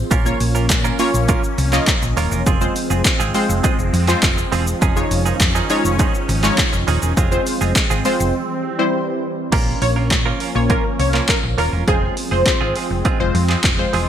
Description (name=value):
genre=dance-pop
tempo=102 BPM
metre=4/4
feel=straight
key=unclear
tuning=A4 = 440 Hz
part: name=punchy chord stab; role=accompaniment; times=0.0-14.1 s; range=G3 to Eb5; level=-23 LUFS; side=left 1 dB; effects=chorus, sidechain pumping
part: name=sweeping resonant pad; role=sustained chords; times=0.0-14.1 s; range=Eb3 to Db4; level=-25 LUFS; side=right 2 dB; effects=chorus, sidechain pumping
part: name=direct-recorded clean electric guitar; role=riff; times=0.1-14.1 s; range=F3 to Bb4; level=-25 LUFS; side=right 8 dB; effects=lush chorus
part: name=hollow-body short-scale fingered electric bass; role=bass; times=0.1-14.1 s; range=Eb1 to Bb2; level=-20 LUFS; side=equal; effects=sidechain pumping
part: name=punchy analog drum machine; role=drums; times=0.1-14.1 s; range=crash cymbal, handclaps, hi-hat, kick drum, shaker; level=-19 LUFS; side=equal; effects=gated reverb
part: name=plucky unison lead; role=melody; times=9.8-12.7 s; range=Ab4 to Db5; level=-23 LUFS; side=equal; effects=lush chorus, sidechain pumping
room=light reverb, digital ambience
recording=bright 1980s-style digital production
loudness=-15 LUFS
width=side -9 dB against mid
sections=0.0-9.5 A section; 9.5-14.1 B section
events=break 8.3-9.5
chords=0.1 Bbm; 2.5 Fm; 4.8 Dbadd9/F; 7.2 Fm; 8.3 C; 9.5 Bbm; 11.9 Fm